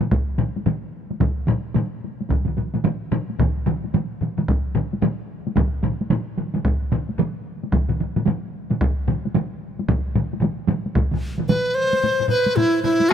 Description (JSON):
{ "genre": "japanese traditional, taiko drum ensemble", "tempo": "111 BPM", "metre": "4/4", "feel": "swing 60% on 16ths", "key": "unclear", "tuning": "A4 = 442 Hz", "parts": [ { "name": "taiko ensemble", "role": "percussion", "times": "0.0-13.1 s", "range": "none", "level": "-28 LUFS", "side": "left 2 dB", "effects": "none" }, { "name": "taiko ensemble", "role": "percussion", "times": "0.0-13.1 s", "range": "none", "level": "-26 LUFS", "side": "left 2 dB", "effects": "none" }, { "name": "taiko ensemble", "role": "percussion", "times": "0.0-11.6 s", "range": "none", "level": "-25 LUFS", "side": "right 3 dB", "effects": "none" }, { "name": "solo taiko drums", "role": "percussion", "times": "0.1-11.1 s", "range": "none", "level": "-24 LUFS", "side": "right 1 dB", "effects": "none" }, { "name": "breathy large dizi", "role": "melody", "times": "11.5-13.1 s", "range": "E4 to C5", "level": "-18 LUFS", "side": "equal", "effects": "none" } ], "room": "light reverb", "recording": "none", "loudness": "-20 LUFS", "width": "side -9 dB against mid", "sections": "0.0-12.0 A section; 12.0-13.1 B section", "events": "none", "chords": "none", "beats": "0.12 0.67 | 1.21 1.76 2.30 2.85 | 3.39 3.94 4.48 5.02 | 5.57 6.11 6.65 7.19 | 7.73 8.27 8.81 9.35 | 9.88 10.42 10.96 11.49 | 12.03 12.56 13.10" }